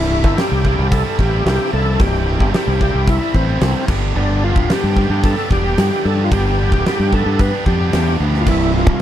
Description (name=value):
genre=classic rock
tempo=111 BPM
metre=4/4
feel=straight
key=C major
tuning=A4 = 441 Hz
part: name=overdriven tonewheel organ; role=melody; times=0.0-9.0 s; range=C4 to B4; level=-20 LUFS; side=equal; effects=chorus vibrato, slow rotary speaker
part: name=distorted electric guitar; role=riff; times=0.0-9.0 s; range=C2 to G4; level=-23 LUFS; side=right 2 dB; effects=overdrive
part: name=growling fingered electric bass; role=bass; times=0.0-9.0 s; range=C1 to G2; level=-17 LUFS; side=equal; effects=overdrive
part: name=huge arena drum kit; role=drums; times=0.2-9.0 s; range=crash cymbal, hi-hat, kick drum, snare drum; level=-19 LUFS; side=equal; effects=none
part: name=crunchy overdriven guitar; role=riff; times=8.5-9.0 s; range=C2 to E4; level=-21 LUFS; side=right 3 dB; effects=none
room=little or no reverb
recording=none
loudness=-14 LUFS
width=side -11 dB against mid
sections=0.0-9.0 A section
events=none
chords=0.0 C; 3.9 G; 8.5 C